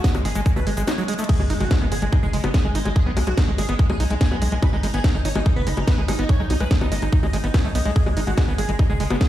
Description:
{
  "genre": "psychedelic trance",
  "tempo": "144 BPM",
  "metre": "4/4",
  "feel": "straight",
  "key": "G# minor",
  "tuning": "A4 = 439 Hz",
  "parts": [
    { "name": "supersaw stab", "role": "melody", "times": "0.0-9.3 s", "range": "G#3 to G#5", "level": "-29 LUFS", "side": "right 1 dB", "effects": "phaser, sidechain pumping, tape echo" },
    { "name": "screaming distorted acid line", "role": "riff", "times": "0.0-9.2 s", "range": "F#3 to D#4", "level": "-27 LUFS", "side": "equal", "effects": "distortion, chorus, auto-pan, cassette tape, sidechain pumping, tape echo" },
    { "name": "electronic kick drum", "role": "drums", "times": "0.0-9.3 s", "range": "none", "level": "-18 LUFS", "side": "equal", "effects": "none" },
    { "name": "garage drum kit", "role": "drums", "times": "0.0-9.3 s", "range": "bongos, crash cymbal, hi-hat, snare drum", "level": "-28 LUFS", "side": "left 2 dB", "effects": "none" },
    { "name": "tube shaker", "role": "percussion", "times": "0.0-1.3 s", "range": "none", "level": "-40 LUFS", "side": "left 2 dB", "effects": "none" },
    { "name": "tight sequencer bass", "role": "bass", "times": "0.1-9.2 s", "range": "F#1 to B1", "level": "-23 LUFS", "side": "equal", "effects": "none" },
    { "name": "impact", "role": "sound effects", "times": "1.3-3.0 s", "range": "none", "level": "-30 LUFS", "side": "equal", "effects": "none" }
  ],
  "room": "light reverb, digital ambience",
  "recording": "played on a big sound system in a bare room, large studio reverb",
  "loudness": "-18 LUFS",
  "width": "side -13 dB against mid",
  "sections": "0.0-1.3 A section; 1.3-9.3 B section",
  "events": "kick drops out 0.9-1.3; drum fill 1.1; drop 1.3-9.3; impact 1.3-3.0",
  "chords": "0.0 G#5",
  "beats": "0.04 0.46 0.88 | 1.29 1.71 2.12 2.54 | 2.96 3.38 3.79 4.21 | 4.62 5.04 5.46 5.88 | 6.29 6.71 7.12 7.54 | 7.96 8.38 8.79 9.21"
}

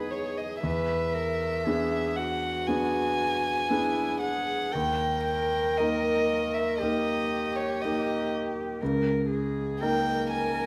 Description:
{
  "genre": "classical, slow romantic movement for piano trio",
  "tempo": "59 BPM",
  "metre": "4/4",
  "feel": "rubato",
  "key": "unclear",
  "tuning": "A4 = 440 Hz",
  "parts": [
    { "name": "warm violin", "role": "melody", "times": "0.0-10.7 s", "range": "B4 to G#5", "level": "-32 LUFS", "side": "equal", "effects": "none" },
    { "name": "dark cello", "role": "second line", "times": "0.0-10.7 s", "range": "E4 to B4", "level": "-34 LUFS", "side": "equal", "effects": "none" },
    { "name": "clear grand piano", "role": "accompaniment", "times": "0.0-10.7 s", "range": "C#2 to A#4", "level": "-32 LUFS", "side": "equal", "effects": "none" }
  ],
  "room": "wet recital hall reverb, RT60 1.6 s",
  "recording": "none",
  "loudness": "-28 LUFS",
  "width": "mono",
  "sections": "0.0-10.7 A section",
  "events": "none",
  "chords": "0.0 Emaj7; 0.6 E7; 4.7 D#; 8.8 D#7/C#",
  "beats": "| 0.65 1.68 2.69 3.72 | 4.74 5.78 6.80 7.82 | 8.81 9.80"
}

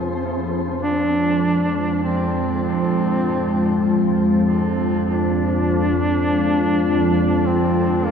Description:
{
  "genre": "dark ambient drone",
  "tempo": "50 BPM",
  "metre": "4/4",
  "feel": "straight",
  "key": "F dorian",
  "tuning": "A4 = 440 Hz",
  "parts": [
    { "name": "deep dark ambient pad", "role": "sustained chords", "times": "1.4-8.1 s", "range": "Ab3 to F5", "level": "-23 LUFS", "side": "left 1 dB", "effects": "chorus, built-in reverb, shimmer reverb" },
    { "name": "carillon bells", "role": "arpeggios", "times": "0.0-8.1 s", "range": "D3 to Ab4", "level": "-38 LUFS", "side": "left 2 dB", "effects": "none" },
    { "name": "organ-like drone", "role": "drone", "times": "0.0-8.1 s", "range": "F2 to F3", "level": "-20 LUFS", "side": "right 1 dB", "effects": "ensemble chorus, built-in reverb" },
    { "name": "warm duduk", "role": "melody", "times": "0.8-8.1 s", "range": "Bb3 to D4", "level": "-22 LUFS", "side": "equal", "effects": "shimmer reverb, ping-pong delay" }
  ],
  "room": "wet huge ambient reverb, RT60 8.3 s",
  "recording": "dreamy mix soaked in reverb",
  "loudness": "-17 LUFS",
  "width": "side -7 dB against mid",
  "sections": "0.2-8.1 A section",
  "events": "none",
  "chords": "0.0 Fm",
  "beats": "| 0.18 1.41 2.64 3.85 | 5.05 6.26 7.47"
}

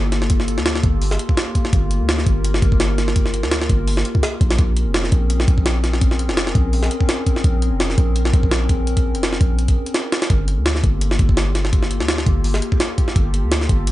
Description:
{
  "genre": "drum and bass, jungle",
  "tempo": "168 BPM",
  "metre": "4/4",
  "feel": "swing 55% on 16ths",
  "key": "G minor",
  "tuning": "A4 = 440 Hz",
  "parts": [
    { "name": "warbly tape-like pad", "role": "sustained chords", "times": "0.0-13.9 s", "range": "Bb3 to Bb4", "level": "-25 LUFS", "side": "left 2 dB", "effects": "chorus, built-in reverb, vintage 12-bit sampler grit" },
    { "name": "warm 808-style bass", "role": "bass", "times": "0.0-13.9 s", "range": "F1 to D2", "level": "-19 LUFS", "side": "equal", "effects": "none" },
    { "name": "jungle sampler-style drum kit", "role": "drums", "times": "0.1-13.9 s", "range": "hi-hat, kick drum, snare drum", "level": "-18 LUFS", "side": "equal", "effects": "studio reverb" }
  ],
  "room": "digital ambience",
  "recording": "nothing above 10.4 kHz",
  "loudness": "-16 LUFS",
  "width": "side -16 dB against mid",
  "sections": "0.0-13.9 A section",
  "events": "none",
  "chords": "0.0 Gm9; 4.6 Bbm9; 10.3 Gm9",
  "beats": "| 0.30 0.66 1.02 1.37 | 1.73 2.09 2.44 2.80 | 3.16 3.52 3.87 4.23 | 4.59 4.95 5.30 5.66 | 6.02 6.37 6.73 7.09 | 7.45 7.80 8.16 8.52 | 8.87 9.23 9.59 9.95 | 10.30 10.66 11.02 11.37 | 11.73 12.09 12.45 12.80 | 13.16 13.52 13.87"
}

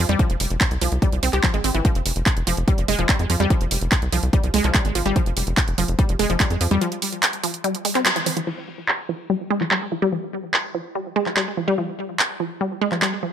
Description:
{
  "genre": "psychedelic trance",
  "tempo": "145 BPM",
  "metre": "4/4",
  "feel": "straight",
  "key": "F minor",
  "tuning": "A4 = 438 Hz",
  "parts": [
    { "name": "wide unison pluck", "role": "riff", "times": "0.0-13.3 s", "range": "E3 to G4", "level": "-24 LUFS", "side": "moving between left 2 dB and right 4 dB", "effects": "auto-pan, cassette tape, sidechain pumping, digital delay" },
    { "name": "tight sequencer bass", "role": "bass", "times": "0.0-6.8 s", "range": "F1 to F2", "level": "-22 LUFS", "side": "equal", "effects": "none" },
    { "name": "techno drum kit", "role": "drums", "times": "0.1-13.1 s", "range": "crash cymbal, handclaps, hi-hat", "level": "-23 LUFS", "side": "right 1 dB", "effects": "low-pass filter on hats, low-pass filter on snare, low-pass filter on cymbals, low-pass filter on room" },
    { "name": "electronic kick drum", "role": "drums", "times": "0.2-6.5 s", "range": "none", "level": "-20 LUFS", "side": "equal", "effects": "none" }
  ],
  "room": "light reverb, digital ambience",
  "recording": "none",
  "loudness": "-19 LUFS",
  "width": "side -9 dB against mid",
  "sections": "0.0-8.5 A section; 8.5-13.3 B section",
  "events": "band accent 8.1",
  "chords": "0.0 F5",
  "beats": "| 0.19 0.61 1.02 1.44 | 1.85 2.26 2.68 3.09 | 3.50 3.92 4.33 4.75 | 5.16 5.57 5.99 6.40 | 6.82 7.23 7.64 8.06 | 8.47 8.88 9.30 9.71 | 10.12 10.54 10.95 11.37 | 11.78 12.19 12.61 13.02"
}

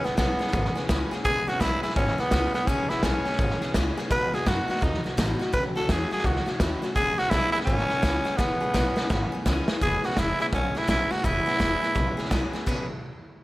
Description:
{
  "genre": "rockabilly",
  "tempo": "168 BPM",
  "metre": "4/4",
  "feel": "swing 63% on 8ths",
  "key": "E major",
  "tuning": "A4 = 440 Hz",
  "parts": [
    { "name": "growling tenor saxophone", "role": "melody", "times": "0.0-12.3 s", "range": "B3 to B4", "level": "-27 LUFS", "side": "equal", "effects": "analog delay" },
    { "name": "picked steel-string acoustic guitar", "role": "accompaniment", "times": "0.0-12.9 s", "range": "A2 to G#4", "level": "-33 LUFS", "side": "left 2 dB", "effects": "none" },
    { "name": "upright bass", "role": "bass", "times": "0.0-12.9 s", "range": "E1 to F#2", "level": "-30 LUFS", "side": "equal", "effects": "none" },
    { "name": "raw garage drum kit", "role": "drums", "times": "0.0-12.8 s", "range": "crash cymbal, hi-hat, kick drum, snare drum", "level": "-27 LUFS", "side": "equal", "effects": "none" }
  ],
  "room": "light reverb",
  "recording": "none",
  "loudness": "-22 LUFS",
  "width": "side -18 dB against mid",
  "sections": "0.0-9.8 A section; 9.8-12.7 B section",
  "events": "drum fill 8.4-9.8",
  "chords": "0.0 E6; 4.1 B6; 5.5 A6; 7.0 E6",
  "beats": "0.18 0.54 0.89 | 1.25 1.61 1.96 2.32 | 2.68 3.03 3.39 3.75 | 4.11 4.46 4.82 5.18 | 5.53 5.89 6.25 6.60 | 6.96 7.32 7.67 8.03 | 8.39 8.74 9.10 9.46 | 9.81 10.17 10.53 10.88 | 11.24 11.60 11.96 12.31 | 12.67"
}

